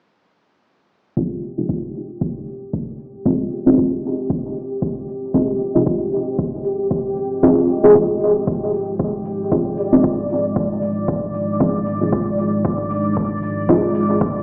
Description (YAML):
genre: dub techno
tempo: 115 BPM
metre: 4/4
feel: swing 55% on 16ths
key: F dorian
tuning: A4 = 440 Hz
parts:
  - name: dark analog pad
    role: sustained chords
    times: 1.2-14.4 s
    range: Ab3 to D5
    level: -27 LUFS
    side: equal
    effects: subtle chorus, sidechain pumping
  - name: deep mellow chord stab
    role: stabs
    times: 1.2-13.8 s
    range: C4 to Eb5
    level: -20 LUFS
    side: equal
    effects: chorus, phaser, dub echo
  - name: electronic kick drum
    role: drums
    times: 1.2-14.3 s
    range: none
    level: -26 LUFS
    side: equal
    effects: overdrive
  - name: bubbling stepped-filter texture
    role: texture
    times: 1.2-14.4 s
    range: G4 to D5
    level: -27 LUFS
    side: equal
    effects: chorus, built-in reverb, sidechain pumping
  - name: electronic hi-hat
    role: drums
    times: 1.4-14.1 s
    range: none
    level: -49 LUFS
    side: equal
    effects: overdrive
room: wet echo chamber reverb, RT60 1.6 s, digital ambience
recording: played on a big sound system in a bare room, stone room reverb, low-pass filter, small speaker sound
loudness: -19 LUFS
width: mono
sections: 1.2-14.4 A section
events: filter sweep on synth stab 1.2-14.4; filter sweep on analog synth pad 1.2-14.4; filter sweep 1.2-14.4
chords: 1.2 Fm7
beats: | 1.17 1.69 2.21 2.73 | 3.26 3.78 4.30 4.82 | 5.34 5.87 6.39 6.91 | 7.43 7.95 8.47 9.00 | 9.52 10.04 10.56 11.08 | 11.60 12.13 12.65 13.17 | 13.69 14.21